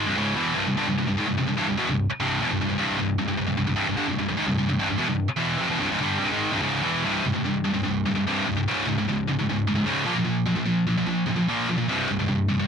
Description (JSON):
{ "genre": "metal", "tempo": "148 BPM", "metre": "4/4", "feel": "straight", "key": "C phrygian dominant", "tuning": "A4 = 441 Hz", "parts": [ { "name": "scooped high-gain guitar", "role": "solo", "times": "0.0-12.7 s", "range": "C2 to Bb3", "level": "-22 LUFS", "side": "equal", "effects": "distortion" } ], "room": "light reverb", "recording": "dark, warm production", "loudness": "-22 LUFS", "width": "side -6 dB against mid", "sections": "0.0-7.1 A section; 7.1-12.7 B section", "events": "none", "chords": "0.0 C; 7.1 C5; 8.7 Db5; 10.1 Bb5; 11.9 C5" }